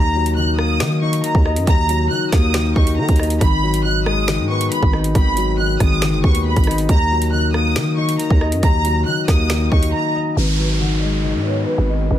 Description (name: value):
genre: hip hop, drill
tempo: 138 BPM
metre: 4/4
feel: half-time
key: G# minor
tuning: A4 = 440 Hz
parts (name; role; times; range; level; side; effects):
- warm studio violin section; melody; 0.0-12.2 s; B4 to F#6; -22 LUFS; right 1 dB; low-pass filter, ping-pong delay
- dark baby grand piano; accompaniment; 0.0-12.2 s; D#3 to D#5; -21 LUFS; left 4 dB; low-pass filter
- growling 808-style bass; bass; 0.0-12.2 s; F#1 to D#3; -19 LUFS; right 1 dB; none
- drill drum kit; drums; 0.3-9.9 s; finger snaps, hi-hat, kick drum, rim click, snare drum; -18 LUFS; right 1 dB; soft clipping on snare
- downlifter; sound effects; 10.4-12.2 s; none; -26 LUFS; right 2 dB; none
room: digital ambience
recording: dense, heavily limited modern master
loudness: -15 LUFS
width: side -11 dB against mid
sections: 0.0-10.4 A section; 10.4-12.2 B section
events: break 9.9-10.4; filter sweep 10.4-12.2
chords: 0.0 D#m; 3.4 G#m7; 6.9 D#m; 10.4 G#m7